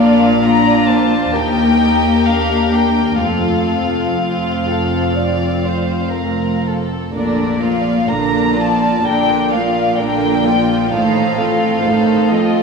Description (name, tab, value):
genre	classical, slow romantic movement for string orchestra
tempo	60-68 BPM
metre	4/4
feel	rubato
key	Bb major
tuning	A4 = 440 Hz
part	warm chamber violin section	melody	0.0-12.6 s	D5 to Bb5	-19 LUFS	left 3 dB	none
part	warm chamber violin section	second line	0.0-12.6 s	D4 to D5	-21 LUFS	equal	none
part	dark chamber viola section	accompaniment	0.0-12.6 s	D3 to Eb4	-17 LUFS	equal	none
part	dark chamber double bass section	bass	0.0-12.6 s	F1 to Eb2	-22 LUFS	right 3 dB	none
part	rich studio cello section	bass	0.0-12.6 s	Eb2 to Bb2	-21 LUFS	right 1 dB	none
room	wet concert hall reverb, RT60 2.2 s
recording	recorded in a church or concert hall, small room ambience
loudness	-13 LUFS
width	side -5 dB against mid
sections	0.0-12.6 A section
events	none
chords	0.0 Bb; 1.3 Eb; 3.2 F; 7.1 Bb; 10.9 F7/A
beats	0.44 1.33 2.25 | 3.21 4.20 5.17 6.16 | 7.14 8.09 9.05 9.99 | 10.93 11.85